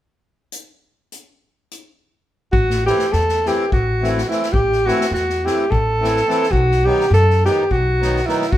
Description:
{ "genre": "balkan folk, Balkan wedding band", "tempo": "210 BPM (eighths)", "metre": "7/8", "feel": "straight", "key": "A dorian sharp4", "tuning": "A4 = 442 Hz", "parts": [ { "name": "unplugged drum kit", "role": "percussion", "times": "0.5-8.6 s", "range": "hi-hat, kick drum, snare drum", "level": "-24 LUFS", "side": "left 1 dB", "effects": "none" }, { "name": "breathy alto saxophone", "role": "melody", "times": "2.5-8.6 s", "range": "E4 to A4", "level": "-18 LUFS", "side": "equal", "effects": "none" }, { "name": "upright bass", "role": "bass", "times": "2.5-8.6 s", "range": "A1 to F#2", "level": "-20 LUFS", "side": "equal", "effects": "none" }, { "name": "accordion", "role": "accompaniment", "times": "2.9-8.5 s", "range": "D#3 to E4", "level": "-23 LUFS", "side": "left 1 dB", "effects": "none" } ], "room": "moderate stone room reverb, RT60 1.0 s", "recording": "band playing live in one room", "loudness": "-15 LUFS", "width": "side -13 dB against mid", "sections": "0.5-2.5 A section; 2.5-8.6 B section", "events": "none", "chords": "0.5 N.C.; 2.5 Am; 6.5 B" }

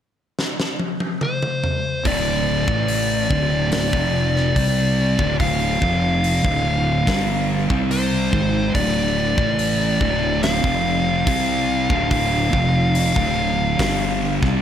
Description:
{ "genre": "stoner and doom metal", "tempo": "72 BPM", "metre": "4/4", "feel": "straight", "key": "D minor", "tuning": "A4 = 439 Hz", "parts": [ { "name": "big rock drum kit", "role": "drums", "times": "0.4-14.6 s", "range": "hi-hat, kick drum, snare drum, toms", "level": "-24 LUFS", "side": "equal", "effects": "none" }, { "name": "fuzz lead guitar", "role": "melody", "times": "1.2-14.6 s", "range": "C5 to F5", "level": "-22 LUFS", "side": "left 1 dB", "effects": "distortion" }, { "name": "fuzz guitar", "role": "riff", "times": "2.0-14.6 s", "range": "D2 to C4", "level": "-21 LUFS", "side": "equal", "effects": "distortion" }, { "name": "fuzz fingered electric bass", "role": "bass", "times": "2.1-14.6 s", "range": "D1 to C2", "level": "-25 LUFS", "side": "equal", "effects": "overdrive, tube saturation" } ], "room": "studio ambience", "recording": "none", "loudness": "-17 LUFS", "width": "side -9 dB against mid", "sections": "0.0-2.0 A section; 2.0-14.6 B section", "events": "drum fill 0.4-2.0", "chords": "0.0 N.C.; 2.0 Dm" }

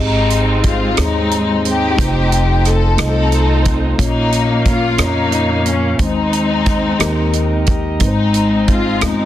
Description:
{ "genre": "slow gospel", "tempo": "60 BPM (dotted quarters)", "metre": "6/8", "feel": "straight", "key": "Ab major", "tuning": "A4 = 440 Hz", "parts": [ { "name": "warm studio string section", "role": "melody", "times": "0.0-9.3 s", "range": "Ab3 to A4", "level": "-18 LUFS", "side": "left 2 dB", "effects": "none" }, { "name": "mellow tine electric piano", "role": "accompaniment", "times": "0.0-9.3 s", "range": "Ab2 to Eb5", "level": "-18 LUFS", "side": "left 1 dB", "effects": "slow stereo tremolo" }, { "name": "muted French horn section", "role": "sustained chords", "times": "0.0-9.3 s", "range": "Ab3 to F5", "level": "-28 LUFS", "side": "right 1 dB", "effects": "none" }, { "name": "upright bass", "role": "bass", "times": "0.0-9.3 s", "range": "F1 to F2", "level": "-18 LUFS", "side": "equal", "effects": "none" }, { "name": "warm soul drum kit", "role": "drums", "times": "0.3-9.2 s", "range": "hi-hat, kick drum, rim click", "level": "-18 LUFS", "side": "right 1 dB", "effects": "none" } ], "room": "light reverb, studio ambience", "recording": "dense, heavily limited modern master", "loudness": "-12 LUFS", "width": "side -12 dB against mid", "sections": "0.0-9.3 A section", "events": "none", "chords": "0.0 Ab; 2.0 F7; 4.0 Bbm; 6.0 Ab/Eb; 7.0 Eb; 8.0 Ab" }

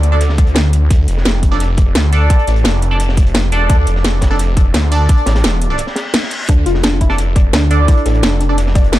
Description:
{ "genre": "dark technical drum and bass", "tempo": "172 BPM", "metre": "4/4", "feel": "straight", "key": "D minor", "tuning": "A4 = 440 Hz", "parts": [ { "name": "band-passed chord stab", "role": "stabs", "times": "0.0-8.5 s", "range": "D4 to D5", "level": "-20 LUFS", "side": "right 2 dB", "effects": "phaser, ping-pong delay" }, { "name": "snarling distorted saw bass", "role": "bass", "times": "0.0-9.0 s", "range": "E1 to D2", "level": "-14 LUFS", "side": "equal", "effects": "distortion, tube saturation" }, { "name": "crunchy breakbeat drum kit", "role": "drums", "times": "0.0-9.0 s", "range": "hi-hat, snare drum", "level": "-26 LUFS", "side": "equal", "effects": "high-pass filter on hats, high-pass filter on snare, high-pass filter on room" }, { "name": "drum and bass drum kit", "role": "drums", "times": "0.0-9.0 s", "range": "hi-hat, snare drum", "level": "-18 LUFS", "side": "equal", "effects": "none" }, { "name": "electronic kick drum", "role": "drums", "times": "0.4-8.8 s", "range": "none", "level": "-11 LUFS", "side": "equal", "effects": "none" }, { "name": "reverse cymbal", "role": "sound effects", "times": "5.9-6.5 s", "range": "none", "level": "-25 LUFS", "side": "left 2 dB", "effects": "none" }, { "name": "soft round pluck", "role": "arpeggios", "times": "6.5-9.0 s", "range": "D4 to D5", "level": "-20 LUFS", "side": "left 2 dB", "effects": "chorus, sidechain pumping, ping-pong delay" } ], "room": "little or no reverb", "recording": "dark, warm production", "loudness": "-11 LUFS", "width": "side -15 dB against mid", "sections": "0.0-9.0 A section", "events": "break 5.8-6.5; reverse cymbal 5.9-6.5", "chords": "0.0 D5" }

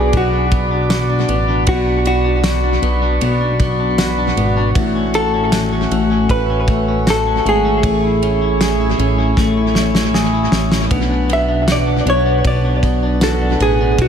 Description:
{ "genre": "dream pop", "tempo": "78 BPM", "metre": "4/4", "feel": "straight", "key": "unclear", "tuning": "A4 = 440 Hz", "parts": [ { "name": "vintage hollow-body jazz guitar", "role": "melody", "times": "0.0-14.1 s", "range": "F#4 to E5", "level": "-19 LUFS", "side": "right 1 dB", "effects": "tape echo" }, { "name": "mellow tonewheel organ", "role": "sustained chords", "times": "0.0-14.1 s", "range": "A3 to D6", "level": "-22 LUFS", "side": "equal", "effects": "slow rotary speaker" }, { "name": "clean electric guitar", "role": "arpeggios", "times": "0.0-14.1 s", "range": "A2 to G#4", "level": "-20 LUFS", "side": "left 2 dB", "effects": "wide subtle chorus, tape echo" }, { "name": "chorused synth bass", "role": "bass", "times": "0.0-14.1 s", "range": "G#1 to B1", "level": "-18 LUFS", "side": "equal", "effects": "none" }, { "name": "loose indie drum kit", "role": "drums", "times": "0.1-14.1 s", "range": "kick drum, ride cymbal, snare drum, tambourine", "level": "-20 LUFS", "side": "equal", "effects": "tape echo" } ], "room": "moderate echo chamber reverb, RT60 2.8 s", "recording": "echo-heavy mix", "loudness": "-13 LUFS", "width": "side -8 dB against mid", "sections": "0.0-14.1 A section", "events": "drum fill 9.4-10.9", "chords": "0.0 Bm; 4.8 F#m7/A; 7.8 Amaj7; 10.9 Bm" }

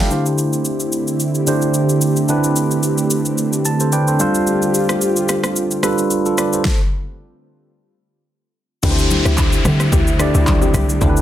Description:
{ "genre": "amapiano", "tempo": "110 BPM", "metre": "4/4", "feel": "swing 55% on 16ths", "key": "D dorian", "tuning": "A4 = 440 Hz", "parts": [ { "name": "tine electric piano", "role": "accompaniment", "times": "0.0-11.2 s", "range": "D3 to B5", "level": "-18 LUFS", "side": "right 2 dB", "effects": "phaser" }, { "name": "warm analog pad", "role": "sustained chords", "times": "0.0-11.2 s", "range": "D3 to G4", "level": "-21 LUFS", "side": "equal", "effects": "chorus, sidechain pumping" }, { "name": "hollow log drum bass", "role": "bass", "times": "0.0-0.1, 8.8-11.2 s", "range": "C2 to D3", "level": "-18 LUFS", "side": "equal", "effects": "none" }, { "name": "deep house drum kit", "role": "drums", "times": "0.1-11.2 s", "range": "crash cymbal, handclaps, kick drum, rim click, shaker, snare drum", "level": "-20 LUFS", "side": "equal", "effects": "overdrive" }, { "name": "glassy wavetable pluck", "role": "stabs", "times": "8.8-11.2 s", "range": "C4 to G4", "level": "-26 LUFS", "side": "left 2 dB", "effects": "chorus, tape echo" }, { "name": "congas", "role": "percussion", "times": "8.8-11.2 s", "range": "none", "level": "-25 LUFS", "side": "left 2 dB", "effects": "none" }, { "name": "downlifter", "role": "sound effects", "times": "8.8-11.2 s", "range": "none", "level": "-24 LUFS", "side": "left 1 dB", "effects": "none" } ], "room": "moderate studio reverb, RT60 0.6 s", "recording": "dense, heavily limited modern master", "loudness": "-14 LUFS", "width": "side -11 dB against mid", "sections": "0.1-8.8 A section; 8.8-11.2 B section", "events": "tine electric piano fill 3.4-4.5; stop 6.7-8.8", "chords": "0.1 D9sus4; 4.2 G9sus4; 8.8 D9sus4" }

